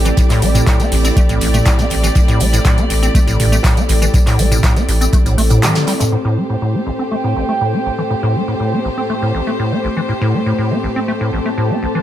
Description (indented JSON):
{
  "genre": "acid house",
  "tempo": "121 BPM",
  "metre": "4/4",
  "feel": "straight",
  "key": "A minor",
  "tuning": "A4 = 440 Hz",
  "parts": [
    { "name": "rich chamber string section", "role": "sustained chords", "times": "0.0-12.0 s", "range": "A2 to D5", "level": "-23 LUFS", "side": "equal", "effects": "sidechain pumping" },
    { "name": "warm sub bass", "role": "bass", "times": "0.0-5.6 s", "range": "A1", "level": "-16 LUFS", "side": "equal", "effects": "sidechain pumping" },
    { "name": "warbly tape-like pad", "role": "texture", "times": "0.0-12.0 s", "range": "C4 to A5", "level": "-22 LUFS", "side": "equal", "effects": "chorus, built-in reverb, sidechain pumping" },
    { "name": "acid bass, square", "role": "riff", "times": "0.1-12.0 s", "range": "A1 to C4", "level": "-18 LUFS", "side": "equal", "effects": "tube saturation, lush chorus, sidechain pumping" },
    { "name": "booming analog drum machine", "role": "drums", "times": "0.1-6.1 s", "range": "handclaps, hi-hat, snare drum, tambourine, toms", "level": "-19 LUFS", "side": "right 1 dB", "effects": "none" },
    { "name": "electronic kick drum", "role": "drums", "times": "0.2-5.2 s", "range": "none", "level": "-14 LUFS", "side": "equal", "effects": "none" },
    { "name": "loose indie drum kit", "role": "drums", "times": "0.2-6.1 s", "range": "hi-hat, snare drum", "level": "-30 LUFS", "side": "right 3 dB", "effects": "none" }
  ],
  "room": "light reverb, digital ambience",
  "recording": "none",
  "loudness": "-12 LUFS",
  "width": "side -12 dB against mid",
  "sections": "0.0-6.1 A section; 6.1-12.0 B section",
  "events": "drum fill 5.6-6.1; band accent 5.6",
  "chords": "0.0 Am7"
}